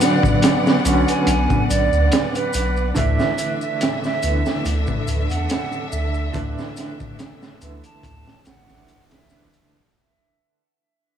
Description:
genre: trip hop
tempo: 71 BPM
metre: 4/4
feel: swing 54% on 16ths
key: unclear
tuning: A4 = 442 Hz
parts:
  - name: clear upright piano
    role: accompaniment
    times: 0.0-9.8 s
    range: D3 to D4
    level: -24 LUFS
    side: right 2 dB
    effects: tremolo, tape echo
  - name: warm studio string section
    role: sustained chords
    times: 0.0-9.7 s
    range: D3 to F#5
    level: -25 LUFS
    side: equal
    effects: none
  - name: crunchy breakbeat drum kit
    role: drums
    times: 0.0-9.7 s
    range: hi-hat, kick drum, snare drum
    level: -22 LUFS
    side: left 1 dB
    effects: none
  - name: maracas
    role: percussion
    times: 0.0-9.7 s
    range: none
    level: -34 LUFS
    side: left 5 dB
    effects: none
  - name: warm sub bass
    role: bass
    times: 0.9-8.9 s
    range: A1 to E2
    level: -21 LUFS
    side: equal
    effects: none
  - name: hollow concert flute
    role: melody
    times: 1.1-9.7 s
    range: B4 to A5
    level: -26 LUFS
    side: right 5 dB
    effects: vintage 12-bit sampler grit, tape echo
room: light reverb, small room ambience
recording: none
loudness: -17 LUFS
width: side -8 dB against mid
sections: 0.0-9.7 A section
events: fade-out 0.7-9.7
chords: 0.0 Bm; 3.0 Dsus2

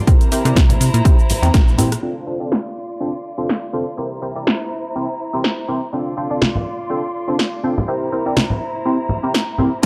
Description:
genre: filtered disco house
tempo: 123 BPM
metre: 4/4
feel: swing 55% on 16ths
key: unclear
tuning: A4 = 440 Hz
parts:
  - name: rich chamber violin section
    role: sustained chords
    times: 0.0-9.9 s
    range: E4 to C6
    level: -29 LUFS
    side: equal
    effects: sidechain pumping, low-pass filter
  - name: funky polysynth comp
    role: accompaniment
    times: 0.1-9.9 s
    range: C4 to D5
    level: -24 LUFS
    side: equal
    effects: chorus, phaser, cassette tape, sidechain pumping, low-pass filter
  - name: plucky analog bass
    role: bass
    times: 0.1-2.0, 9.8-9.9 s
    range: Bb1 to C3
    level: -20 LUFS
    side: equal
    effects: sidechain pumping, low-pass filter
  - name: electronic kick drum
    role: drums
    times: 0.1-1.6, 9.8-9.9 s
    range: none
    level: -15 LUFS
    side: equal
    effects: none
  - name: punchy analog drum machine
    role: drums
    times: 0.1-9.9 s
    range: cabasa, crash cymbal, hi-hat, rim click, snare drum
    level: -23 LUFS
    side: equal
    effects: overdrive, sidechain pumping on hats, low-pass filter on hats, sidechain pumping on perc, low-pass filter on perc, low-pass filter on snare, sidechain pumping on cymbals, low-pass filter on cymbals
  - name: egg shaker and congas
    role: percussion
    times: 0.1-2.0, 5.9-9.8 s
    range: none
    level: -24 LUFS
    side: equal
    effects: sidechain pumping on perc, low-pass filter on perc
room: light reverb, digital ambience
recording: none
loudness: -19 LUFS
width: mono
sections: 0.0-2.0 A section; 2.0-9.8 B section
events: filter sweep 0.0-2.0, 2.0-9.8; band accent 1.5; filter sweep on drum 2.0-9.8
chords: 0.1 C7; 2.0 Dm7; 4.0 C7; 5.9 Dm7; 7.9 C7

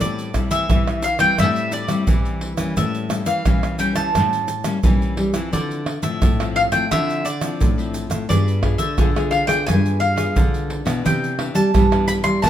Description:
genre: samba and choro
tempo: 87 BPM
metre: 4/4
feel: straight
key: unclear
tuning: A4 = 439 Hz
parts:
  - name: mandolin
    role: melody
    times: 0.0-12.5 s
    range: D5 to C6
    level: -22 LUFS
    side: equal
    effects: none
  - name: nylon-string guitar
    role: accompaniment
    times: 0.0-12.5 s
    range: G2 to Ab4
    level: -26 LUFS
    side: left 4 dB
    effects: none
  - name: nylon-string guitar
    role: bass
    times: 0.0-12.5 s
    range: G2 to G3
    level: -22 LUFS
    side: equal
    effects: none
  - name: egg shaker, surdo, pandeiro and tamborim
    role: percussion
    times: 0.0-12.5 s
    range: none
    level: -21 LUFS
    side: right 1 dB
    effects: none
room: light reverb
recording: minimal, uncompressed stereo recording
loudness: -17 LUFS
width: side -11 dB against mid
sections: 0.0-12.5 A section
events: none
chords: 0.0 Am7; 2.8 A7b9; 5.5 Dm9; 8.3 G7b9; 11.1 Cmaj9

